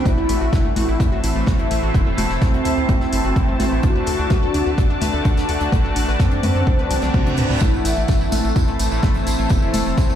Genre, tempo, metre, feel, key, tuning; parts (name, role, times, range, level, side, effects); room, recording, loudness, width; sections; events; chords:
melodic techno; 127 BPM; 4/4; straight; A dorian; A4 = 440 Hz
expressive synth lead; melody; 0.0-10.2 s; C4 to F#4; -25 LUFS; equal; lush chorus, sidechain pumping, ping-pong delay
evolving wavetable pad; sustained chords; 0.0-10.2 s; E4 to A5; -27 LUFS; left 2 dB; chorus, built-in reverb, sidechain pumping
brassy analog pad; stabs; 0.0-10.2 s; A2 to D4; -27 LUFS; left 3 dB; chorus, tremolo, sidechain pumping, ping-pong delay
airy breathy pad; texture; 0.2-10.2 s; C4 to A5; -29 LUFS; right 1 dB; chorus, phaser, sidechain pumping
wide unison pluck; arpeggios; 0.1-10.2 s; A3 to D5; -28 LUFS; right 1 dB; sidechain pumping, ping-pong delay
round analog bass; bass; 0.1-10.2 s; E1 to F#2; -23 LUFS; equal; tube saturation, sidechain pumping
damped 70s drum kit; drums; 0.1-10.2 s; hi-hat, snare drum; -38 LUFS; left 2 dB; high-pass filter on hats, high-pass filter on snare, high-pass filter on room
electronic kick drum; drums; 0.1-10.1 s; -17 LUFS; equal; overdrive
punchy analog drum machine; drums; 0.1-9.8 s; congas, hi-hat, toms; -27 LUFS; left 2 dB; overdrive, sidechain pumping on perc, sidechain pumping on hats, sidechain pumping on toms
reverse cymbal; sound effects; 6.9-7.6 s; -29 LUFS; right 4 dB
tambourine; percussion; 7.6-10.2 s; -32 LUFS; right 4 dB
light reverb; played on a big sound system in a bare room, stone room reverb; -16 LUFS; side -10 dB against mid
0.0-10.2 A section
drum fill 6.9-7.6; reverse cymbal 6.9-7.6
0.1 Am; 3.8 D; 7.6 Am